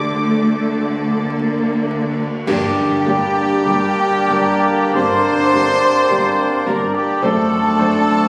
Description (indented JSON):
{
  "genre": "classical, slow romantic movement for symphony orchestra",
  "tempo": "44-54 BPM",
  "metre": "4/4",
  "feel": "rubato",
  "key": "G minor",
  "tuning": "A4 = 440 Hz",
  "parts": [
    { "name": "rich studio violin section", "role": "melody", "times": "0.0-7.9 s", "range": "D5 to D6", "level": "-33 LUFS", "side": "equal", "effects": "none" },
    { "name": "clear symphonic violin section", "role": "second line", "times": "0.0-8.3 s", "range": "G4 to D5", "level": "-27 LUFS", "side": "equal", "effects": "none" },
    { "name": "rich studio viola section", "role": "accompaniment", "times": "0.0-7.9 s", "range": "A3 to C5", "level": "-24 LUFS", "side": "equal", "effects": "none" },
    { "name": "concert harp", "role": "arpeggios", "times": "0.0-8.3 s", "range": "F#2 to A5", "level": "-28 LUFS", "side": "equal", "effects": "none" },
    { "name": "clear symphonic cello section", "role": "bass", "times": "0.0-7.9 s", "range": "F#2 to D3", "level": "-29 LUFS", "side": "equal", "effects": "none" },
    { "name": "clear symphonic double bass section", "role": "bass", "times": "0.0-7.9 s", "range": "F#1 to D2", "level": "-29 LUFS", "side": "equal", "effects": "none" },
    { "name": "clear oboe", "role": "second line", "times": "2.5-8.3 s", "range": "D5", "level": "-27 LUFS", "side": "equal", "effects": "none" },
    { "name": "concert flute", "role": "second line", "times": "2.5-8.3 s", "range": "G5 to C6", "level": "-25 LUFS", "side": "equal", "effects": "none" },
    { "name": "warm clarinet", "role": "second line", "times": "2.5-8.3 s", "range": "D4", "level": "-29 LUFS", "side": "equal", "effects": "none" },
    { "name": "mellow bassoon", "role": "accompaniment", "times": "2.5-8.3 s", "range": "Bb3 to C4", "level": "-29 LUFS", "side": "equal", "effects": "none" },
    { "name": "clear trombone section", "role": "sustained chords", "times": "2.5-8.3 s", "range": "D3 to C4", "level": "-25 LUFS", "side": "equal", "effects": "none" },
    { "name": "warm French horn section", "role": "sustained chords", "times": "2.5-8.3 s", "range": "G3 to C4", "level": "-24 LUFS", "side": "equal", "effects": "none" },
    { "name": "clear trumpet", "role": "stabs", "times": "2.5-8.3 s", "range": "G4 to C5", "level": "-23 LUFS", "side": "equal", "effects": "none" },
    { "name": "clash cymbals and concert bass drum", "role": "percussion", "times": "2.5-4.9 s", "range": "none", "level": "-34 LUFS", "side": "equal", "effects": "none" }
  ],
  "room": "wet recital hall reverb, RT60 1.7 s",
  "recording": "recorded on a phone in the room, club reverb, vinyl crackle, compression",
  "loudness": "-17 LUFS",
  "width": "mono",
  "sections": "0.0-2.5 A section; 2.5-8.3 B section",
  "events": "band accent 2.5-3.7",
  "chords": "0.0 D; 2.5 Gm; 7.2 D7/F#"
}